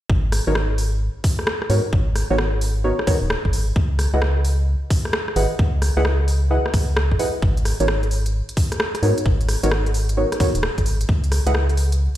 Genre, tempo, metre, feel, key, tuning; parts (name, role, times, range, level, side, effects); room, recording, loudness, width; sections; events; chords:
UK garage, two-step garage; 131 BPM; 4/4; swing 65% on 16ths; G# minor; A4 = 440 Hz
organ-like FM bass; bass; 0.1-12.1 s; D#1 to G#2; -20 LUFS; equal
electronic kick drum; drums; 0.1-11.2 s; -20 LUFS; equal
garage drum kit; drums; 0.3-12.0 s; hi-hat, rim click; -25 LUFS; equal
deep mellow chord stab; stabs; 0.5-11.5 s; B3 to F#5; -24 LUFS; equal; chorus, ping-pong delay
little or no reverb; played on a big sound system in a bare room, stone room reverb; -18 LUFS; side -13 dB against mid
0.1-12.2 A section
0.1 G#m11; 3.8 C#m11; 7.4 G#m11; 11.1 C#m11